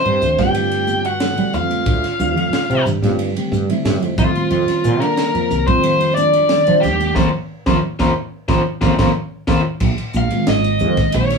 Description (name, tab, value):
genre	electric jazz fusion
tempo	91 BPM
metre	4/4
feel	straight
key	unclear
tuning	A4 = 440 Hz
part	biting lead guitar	melody	0.0-11.4 s	F4 to G5	-18 LUFS	left 1 dB	overdrive
part	dark trombone	second line	0.0-9.6 s	F3 to G4	-26 LUFS	right 2 dB	none
part	woody fretless electric bass	bass	0.0-11.4 s	Ab1 to G3	-20 LUFS	right 2 dB	none
part	crisp fusion drum kit	drums	0.1-11.4 s	crash cymbal, hi-hat, kick drum, ride cymbal, snare drum	-23 LUFS	equal	none
part	congas	percussion	0.2-10.6 s	none	-25 LUFS	left 3 dB	none
part	mellow reed electric piano	accompaniment	0.4-11.3 s	D3 to A4	-22 LUFS	right 2 dB	fast tremolo
room	wet studio ambience, RT60 0.4 s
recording	band playing live in one room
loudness	-15 LUFS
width	side -5 dB against mid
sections	0.0-9.8 A section; 9.8-11.4 B section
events	band accent 7.2-9.8; reed electric piano fill 8.5-9.8; drum fill 9.0-9.8; lead electric guitar solo 9.8-11.4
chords	0.0 G9sus4; 4.2 F9sus4; 9.8 Bb9sus4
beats	0.55 1.21 | 1.87 2.53 3.19 3.86 | 4.52 5.18 5.84 6.50 | 7.17 7.83 8.49 9.15 | 9.82 10.48 11.14